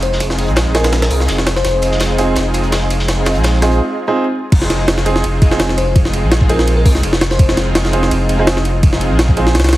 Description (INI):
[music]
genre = drum and bass, jungle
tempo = 167 BPM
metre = 4/4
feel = swing 53% on 16ths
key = F minor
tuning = A4 = 442 Hz
[part]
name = bell-like FM electric piano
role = melody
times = 0.0-1.9, 5.8-7.7 s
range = Bb4 to C5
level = -23 LUFS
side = left 2 dB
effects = chorus, dub echo
[part]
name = saturated sub bass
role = bass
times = 0.0-9.8 s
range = F1 to C2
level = -16 LUFS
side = equal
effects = none
[part]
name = crunchy breakbeat drum kit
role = drums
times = 0.0-3.8 s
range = hi-hat, snare drum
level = -26 LUFS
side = equal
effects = high-pass filter on hats, high-pass filter on snare, high-pass filter on room
[part]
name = jungle sampler-style drum kit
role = drums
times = 0.0-9.8 s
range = crash cymbal, hi-hat, kick drum, ride cymbal, snare drum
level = -15 LUFS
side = equal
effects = high-pass filter on snare, high-pass filter on cymbals, high-pass filter on kick, high-pass filter on hats, high-pass filter on room
[part]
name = lush unison pad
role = sustained chords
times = 0.2-9.7 s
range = Ab3 to Ab4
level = -21 LUFS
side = equal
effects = chorus, vintage 12-bit sampler grit
[part]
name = warm concert grand piano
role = stabs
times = 0.7-9.5 s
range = C4 to Ab4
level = -20 LUFS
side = right 2 dB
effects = low-pass filter, dub echo
[sound]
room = light reverb, small room ambience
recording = heavily compressed radio sound, multiband compression, vinyl crackle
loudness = -12 LUFS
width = side -16 dB against mid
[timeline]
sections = 0.0-4.5 A section; 4.5-9.8 B section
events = build-up 0.0-4.5; drum fill 1.6-3.8; break 3.8-4.5; drop 4.5-9.8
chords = 0.0 Fm7